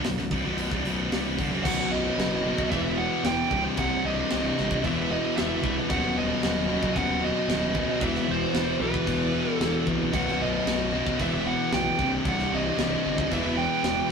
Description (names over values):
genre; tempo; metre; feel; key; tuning
heavy metal; 113 BPM; 4/4; straight; unclear; A4 = 440 Hz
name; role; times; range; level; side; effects
heavy high-gain guitar; riff; 0.0-14.1 s; B1 to E3; -32 LUFS; right 6 dB; distortion
scooped high-gain guitar; riff; 0.0-14.1 s; B1 to E3; -30 LUFS; left 6 dB; distortion
fuzz picked electric bass; bass; 0.0-14.0 s; B0 to B1; -32 LUFS; equal; overdrive
tight metal drum kit; drums; 0.0-14.0 s; crash cymbal, hi-hat, kick drum, snare drum; -32 LUFS; equal; none
high-gain lead guitar; melody; 1.6-14.1 s; B4 to G5; -29 LUFS; right 2 dB; distortion
biting overdriven guitar; riff; 1.6-14.1 s; B1 to E3; -30 LUFS; right 1 dB; none
room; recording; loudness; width
moderate stone room reverb, RT60 1.0 s; rough rehearsal-room recording, tube saturation; -23 LUFS; side -6 dB against mid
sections
0.0-1.6 A section; 1.6-14.1 B section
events
none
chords
0.0 B5; 1.6 B; 2.7 E5; 3.5 C5; 4.8 E5; 5.9 B/D#; 8.0 E5; 10.1 B; 11.2 E5; 12.0 C5; 13.3 Em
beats
0.05 0.58 1.11 | 1.65 2.18 2.71 3.24 | 3.77 4.30 4.83 5.37 | 5.90 6.43 6.96 7.49 | 8.02 8.55 9.08 9.61 | 10.14 10.67 11.20 11.72 | 12.25 12.78 13.31 13.84